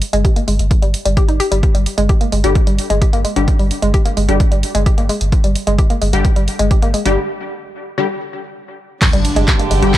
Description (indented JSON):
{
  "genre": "driving peak-time techno",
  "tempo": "130 BPM",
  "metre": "4/4",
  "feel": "straight",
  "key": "G phrygian",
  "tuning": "A4 = 439 Hz",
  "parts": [
    { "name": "punchy analog drum machine", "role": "drums", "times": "0.0-10.0 s", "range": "crash cymbal, handclaps, hi-hat, ride cymbal", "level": "-23 LUFS", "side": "right 2 dB", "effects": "sidechain pumping on hats, sidechain pumping on cymbals" },
    { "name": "woody wave-folded pluck", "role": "riff", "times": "0.1-9.8 s", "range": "G3 to G4", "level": "-20 LUFS", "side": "equal", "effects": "chorus, sidechain pumping, tape echo" },
    { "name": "saturated sub bass", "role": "bass", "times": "0.1-9.9 s", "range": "G1", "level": "-17 LUFS", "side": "equal", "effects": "tube saturation, sidechain pumping, low-pass filter" },
    { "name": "electronic kick drum", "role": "drums", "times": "0.2-10.0 s", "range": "none", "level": "-14 LUFS", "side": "equal", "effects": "none" },
    { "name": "rave stab", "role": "stabs", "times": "2.4-10.0 s", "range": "D3 to G4", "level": "-20 LUFS", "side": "left 3 dB", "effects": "chorus, built-in reverb, sidechain pumping, dub echo" },
    { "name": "overtone-sweeping drone", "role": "drone", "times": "9.2-10.0 s", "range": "G2 to D3", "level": "-24 LUFS", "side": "right 3 dB", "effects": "chorus, built-in reverb, sidechain pumping" },
    { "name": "impact", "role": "sound effects", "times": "9.1-10.0 s", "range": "none", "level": "-22 LUFS", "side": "equal", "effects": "none" },
    { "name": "warm symphonic string section", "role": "texture", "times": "9.0-10.0 s", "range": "D4 to G5", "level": "-21 LUFS", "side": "right 2 dB", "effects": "sidechain pumping" }
  ],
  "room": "digital ambience",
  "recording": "dark, warm production",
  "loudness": "-12 LUFS",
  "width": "side -14 dB against mid",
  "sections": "0.0-9.0 A section",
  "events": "filter sweep on synth arpeggio sound 0.0-9.0; break 7.2-9.0; impact 9.0-10.0",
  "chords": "0.0 G5",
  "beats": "0.25 0.71 1.17 | 1.63 2.09 2.55 3.02 | 3.48 3.94 4.40 4.86 | 5.32 5.79 6.25 6.71 | 7.17 7.63 8.09 8.55 | 9.02 9.48 9.94"
}